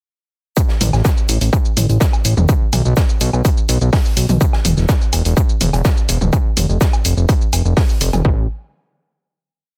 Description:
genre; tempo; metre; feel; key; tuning
melodic techno; 125 BPM; 4/4; straight; unclear; A4 = 440 Hz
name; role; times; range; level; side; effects
big rock drum kit; drums; 0.6-8.2 s; hi-hat, shaker, snare drum; -32 LUFS; equal; sidechain pumping on hats, high-pass filter on hats, high-pass filter on snare, sidechain pumping on perc, high-pass filter on perc, high-pass filter on room
electronic kick drum; drums; 0.6-8.3 s; none; -17 LUFS; equal; distortion, overdrive
punchy analog drum machine; drums; 0.6-8.2 s; hi-hat, shaker, toms, woodblock; -23 LUFS; equal; none
fat analog bass; bass; 0.8-8.5 s; D1 to B1; -17 LUFS; equal; tube saturation, sidechain pumping
room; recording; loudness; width
small room ambience; none; -16 LUFS; mono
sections
0.6-8.2 drop; 8.2-9.8 final chord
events
drop 0.6-8.2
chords
none

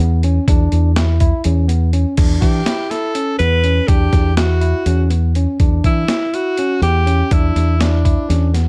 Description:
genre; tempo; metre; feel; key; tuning
progressive instrumental, band music in an uneven meter; 245 BPM (eighths); 7/8; straight; unclear; A4 = 440 Hz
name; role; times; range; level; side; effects
overdriven tine electric piano; arpeggios; 0.0-8.7 s; B3 to E4; -25 LUFS; equal; none
fingered electric bass; bass; 0.0-8.7 s; E2 to E3; -17 LUFS; equal; none
boom bap sampler-style drum kit; drums; 0.2-8.7 s; crash cymbal, hi-hat, kick drum, snare drum; -20 LUFS; equal; none
bright alto saxophone; melody; 2.4-8.5 s; D4 to B4; -22 LUFS; equal; plate reverb
room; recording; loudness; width
light reverb; dark, warm production; -15 LUFS; mono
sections
0.0-2.2 A section; 2.2-8.7 B section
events
none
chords
0.0 Bmadd9/E

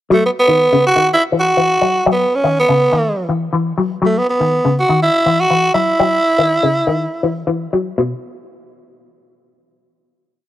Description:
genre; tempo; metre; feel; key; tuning
afrobeat; 122 BPM; 4/4; swing 55% on 16ths; B mixolydian; A4 = 441 Hz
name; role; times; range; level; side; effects
growling tenor saxophone; melody; 0.1-7.4 s; A3 to F#4; -13 LUFS; right 1 dB; none
electric guitar with an envelope filter; arpeggios; 0.1-8.1 s; B2 to F#3; -17 LUFS; left 3 dB; phaser
room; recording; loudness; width
light reverb, small room ambience; dry, close 1970s-style studio recording; -12 LUFS; side -13 dB against mid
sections
0.1-8.0 groove; 8.0-10.5 final note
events
none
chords
0.1 Bsus4; 8.0 N.C.

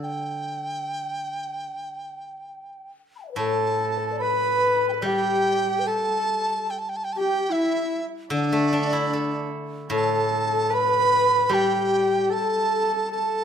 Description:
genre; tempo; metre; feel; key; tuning
chinese traditional, Chinese chamber ensemble; 74 BPM; 4/4; rubato; G gong mode; A4 = 439 Hz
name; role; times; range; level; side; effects
mellow hollow dizi; melody; 0.0-13.4 s; A4 to B5; -25 LUFS; right 2 dB; none
steel-string zither; accompaniment; 0.0-13.4 s; A2 to A4; -29 LUFS; equal; none
breathy mellow low xiao; second line; 3.2-13.4 s; D4 to B5; -26 LUFS; left 8 dB; none
warm horsehead fiddle; second line; 3.4-13.4 s; D4 to B4; -28 LUFS; right 5 dB; none
room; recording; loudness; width
moderate recital hall reverb, RT60 1.4 s; minimal, uncompressed stereo recording; -21 LUFS; side -8 dB against mid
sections
0.0-3.4 A section; 3.4-13.4 B section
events
none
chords
none

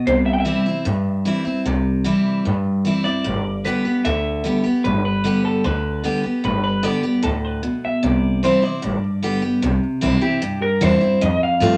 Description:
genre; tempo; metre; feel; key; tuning
rockabilly; 150 BPM; 4/4; straight; C major; A4 = 440 Hz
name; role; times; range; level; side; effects
electric guitar through a small old amp; melody; 0.0-11.8 s; G4 to G5; -25 LUFS; equal; none
picked steel-string acoustic guitar; accompaniment; 0.0-11.8 s; F2 to G4; -22 LUFS; equal; none
upright bass; bass; 0.1-11.8 s; G1 to G2; -25 LUFS; equal; none
room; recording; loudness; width
wet studio reverb, RT60 0.7 s; none; -20 LUFS; mono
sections
0.0-9.6 A section; 9.6-11.8 B section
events
clean electric guitar solo 9.6-11.8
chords
0.1 C; 3.3 G; 8.0 C; 8.8 G; 9.6 C; 11.2 F

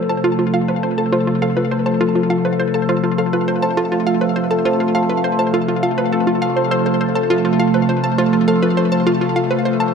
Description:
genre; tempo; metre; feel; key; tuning
ambient, sequencer-driven space music; 102 BPM; 4/4; straight; F lydian; A4 = 444 Hz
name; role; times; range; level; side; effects
phased analog pad; sustained chords; 0.0-9.9 s; C3 to A4; -17 LUFS; equal; phaser, chorus
hollow square pluck; riff; 0.0-9.9 s; F4 to A5; -21 LUFS; equal; chorus, ping-pong delay
soft round pluck; arpeggios; 0.1-9.9 s; F4 to E6; -23 LUFS; right 1 dB; chorus, auto-pan, ping-pong delay
room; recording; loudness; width
wet plate reverb, RT60 2.7 s; none; -15 LUFS; side -6 dB against mid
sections
0.0-9.9 A section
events
none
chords
0.0 F

